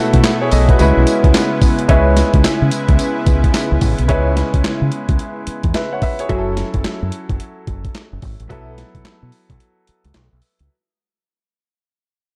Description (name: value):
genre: R&B, new jack swing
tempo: 109 BPM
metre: 4/4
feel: swing 62% on 16ths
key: C# minor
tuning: A4 = 440 Hz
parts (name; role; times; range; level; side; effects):
- clear concert grand piano; accompaniment; 0.0-10.7 s; F#3 to F#5; -22 LUFS; equal; none
- lush unison pad; sustained chords; 0.0-6.3 s; B2 to E4; -24 LUFS; equal; chorus
- deep dub fingered electric bass; bass; 0.1-10.7 s; F#1 to C#3; -18 LUFS; equal; none
- dusty soul sampler-style drum kit; drums; 0.1-10.7 s; handclaps, hi-hat, kick drum, snare drum, tambourine; -19 LUFS; equal; none
- funky polysynth comp; stabs; 1.9-8.8 s; F#4 to E5; -28 LUFS; equal; chorus, delay
room: digital ambience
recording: dark, warm production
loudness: -15 LUFS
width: mono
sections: 0.0-1.9 A section; 1.9-10.7 B section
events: fade-out 1.9-10.7; break 9.6-10.7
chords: 0.0 B7sus4; 0.8 C#m7; 6.3 F#m7; 8.5 B7sus4